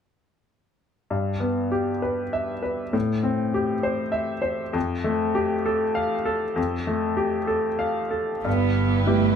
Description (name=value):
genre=neoclassical piano and strings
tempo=98 BPM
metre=3/4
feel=rubato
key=unclear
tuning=A4 = 440 Hz
part: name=bright upright piano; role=accompaniment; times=1.1-9.4 s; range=F2 to F5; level=-23 LUFS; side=left 2 dB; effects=none
part: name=warm studio string section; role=sustained chords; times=8.4-9.4 s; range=E4 to B4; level=-30 LUFS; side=right 2 dB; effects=none
part: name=rich double bass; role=bass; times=8.4-9.4 s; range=G1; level=-24 LUFS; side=equal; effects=none
part: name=warm cello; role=second line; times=8.5-9.4 s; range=A3 to B3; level=-22 LUFS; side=right 15 dB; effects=none
room=light reverb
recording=none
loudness=-22 LUFS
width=side -7 dB against mid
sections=1.1-8.5 A section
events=none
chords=1.1 G6; 2.9 Am7; 4.8 Fadd9; 8.5 G6